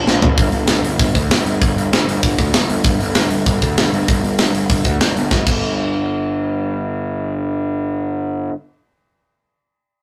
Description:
punk rock; 194 BPM; 4/4; straight; A4 = 441 Hz
fuzz picked electric bass; bass; 0.1-8.5 s; F#1 to D2; -21 LUFS; equal; overdrive
tight metal drum kit; drums; 0.1-5.6 s; crash cymbal, hi-hat, kick drum, snare drum, toms; -18 LUFS; equal
light reverb; rough rehearsal-room recording, tube saturation; -17 LUFS; mono
0.4-5.3 A section; 5.3-7.8 B section
drum fill 0.1-0.4
0.07 | 0.38 0.69 0.99 1.30 | 1.61 1.92 2.23 2.54 | 2.84 3.15 3.46 3.77 | 4.08 4.39 4.69 5.00 | 5.31 5.62 5.93 6.24 | 6.55 6.85 7.16 7.47

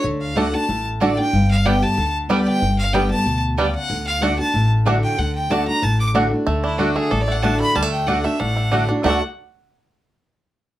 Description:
bluegrass; 187 BPM; 4/4; straight; D major; A4 = 439 Hz
clear fiddle; melody; 0.0-9.2 s; E4 to D6; -23 LUFS; left 1 dB
picked steel-string acoustic guitar; accompaniment; 0.0-9.2 s; G2 to G4; -21 LUFS; left 1 dB
upright bass; bass; 0.0-9.2 s; G1 to D2; -23 LUFS; equal
bluegrass banjo; arpeggios; 0.4-9.2 s; G3 to A4; -24 LUFS; right 3 dB
mandolin; stabs; 0.4-9.2 s; A3 to A5; -24 LUFS; right 2 dB
moderate studio reverb, RT60 0.5 s; -17 LUFS; side -14 dB against mid
0.0-6.5 A section; 6.5-9.0 B section; 9.0-10.3 C section
0.0 D; 1.3 G; 3.9 D
| 0.04 0.37 0.69 1.01 | 1.33 1.65 1.97 2.29 | 2.62 2.94 3.26 3.58 | 3.90 4.22 4.54 4.86 | 5.18 5.50 5.83 6.15 | 6.47 6.79 7.11 7.43 | 7.75 8.08 8.40 8.72 | 9.04

